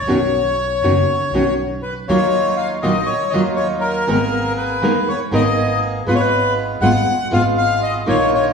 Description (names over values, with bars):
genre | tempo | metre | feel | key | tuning
tango | 120 BPM | 4/4 | rubato | unclear | A4 = 444 Hz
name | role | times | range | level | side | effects
bandoneon | melody | 0.0-8.5 s | Bb4 to Gb5 | -18 LUFS | left 3 dB | none
upright bass | bass | 0.0-8.5 s | F#1 to Eb2 | -24 LUFS | right 1 dB | none
nylon-string guitar | accompaniment | 0.1-8.2 s | B2 to Bb4 | -20 LUFS | equal | none
bandoneon | stabs | 2.1-8.5 s | Gb3 to Ab4 | -24 LUFS | right 2 dB | none
room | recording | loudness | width
wet recital hall reverb, RT60 1.4 s | recorded in a church or concert hall, studio ambience | -15 LUFS | side -6 dB against mid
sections
0.0-8.5 A section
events
none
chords
0.1 Badd9; 2.1 Ebmadd9; 4.1 Abmadd9; 6.1 Fdim/Ab